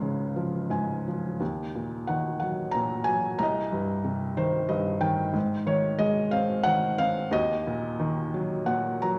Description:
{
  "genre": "classical, lyrical solo piano",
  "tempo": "91 BPM",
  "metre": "3/4",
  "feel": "rubato",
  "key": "Eb dorian",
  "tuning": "A4 = 440 Hz",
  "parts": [
    { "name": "felt-muted upright piano", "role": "solo", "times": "0.0-9.2 s", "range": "C2 to Bb5", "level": "-28 LUFS", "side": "equal", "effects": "none" }
  ],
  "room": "moderate scoring stage reverb, RT60 1.6 s",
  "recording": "none",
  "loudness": "-28 LUFS",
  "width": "mono",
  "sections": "0.0-9.2 A section",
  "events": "felt piano fill 0.4-1.4, 4.0-5.3, 8.3-9.2",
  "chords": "0.0 Db; 1.4 Ebm; 3.4 Cm7; 5.3 Ab; 7.3 Ebm"
}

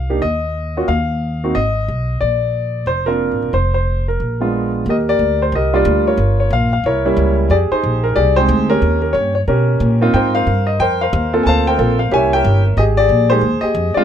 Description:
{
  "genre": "jazz",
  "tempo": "182 BPM",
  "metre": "4/4",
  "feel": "swing 63% on 8ths",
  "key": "Bb major, Eb major from 4.9 s",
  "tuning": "A4 = 440 Hz",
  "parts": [
    { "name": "warm concert grand piano", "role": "melody", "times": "0.0-14.0 s", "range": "G3 to A5", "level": "-16 LUFS", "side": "equal", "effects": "none" },
    { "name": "upright bass", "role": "bass", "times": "0.0-14.0 s", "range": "E1 to Cb3", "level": "-17 LUFS", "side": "equal", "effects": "none" }
  ],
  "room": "little or no reverb",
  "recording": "close, detailed microphones",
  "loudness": "-13 LUFS",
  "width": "side -9 dB against mid",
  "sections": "0.0-4.9 A section; 4.9-14.0 B section",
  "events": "none",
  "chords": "0.0 Cm7; 0.9 N.C.; 1.5 Ab5; 2.2 Bbadd9; 3.5 F5; 4.2 Bb7b9; 4.9 Ebmaj7; 6.2 Gm7b5; 6.8 C7b9; 7.5 Fm9; 8.8 Eb7; 10.1 Ab69; 11.5 Gm11; 12.1 C7b9; 12.8 Fm11"
}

